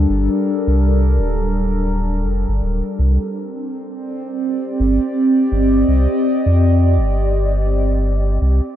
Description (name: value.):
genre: ambient dub.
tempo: 83 BPM.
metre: 4/4.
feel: swing 60% on 16ths.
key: unclear.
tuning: A4 = 440 Hz.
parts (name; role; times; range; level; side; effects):
warbly tape-like pad; sustained chords; 0.0-8.8 s; G3 to Eb5; -18 LUFS; equal; chorus, built-in reverb, phaser.
warm sub bass; bass; 0.0-8.6 s; D1 to F2; -16 LUFS; equal; none.
room: light reverb, digital ambience.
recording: none.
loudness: -15 LUFS.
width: side -11 dB against mid.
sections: 0.0-8.8 A section.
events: none.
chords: 0.0 Gmadd9; 3.0 Cm7.